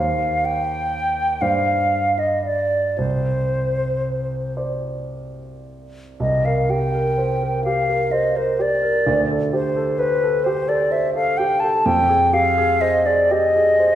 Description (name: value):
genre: classical, impressionist duo for flute and grand piano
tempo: 36-44 BPM (dotted quarters)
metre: 6/8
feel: rubato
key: C minor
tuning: A4 = 440 Hz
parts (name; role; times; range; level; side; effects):
- hollow concert flute; melody; 0.0-13.9 s; B4 to A5; -19 LUFS; equal; none
- warm grand piano; accompaniment; 0.0-13.9 s; C2 to F5; -22 LUFS; right 1 dB; none
room: wet recital hall reverb, RT60 1.4 s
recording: recorded in a church or concert hall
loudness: -17 LUFS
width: side -11 dB against mid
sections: 0.0-6.2 A section; 6.2-13.9 A section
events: none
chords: 0.0 Eb69; 1.4 G7sus4; 3.0 Csus2; 6.2 C5; 9.1 D7sus4; 11.9 Fm9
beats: 1.42 | 2.98 4.58 | 6.20 7.65 | 9.07 10.45 | 11.86 13.30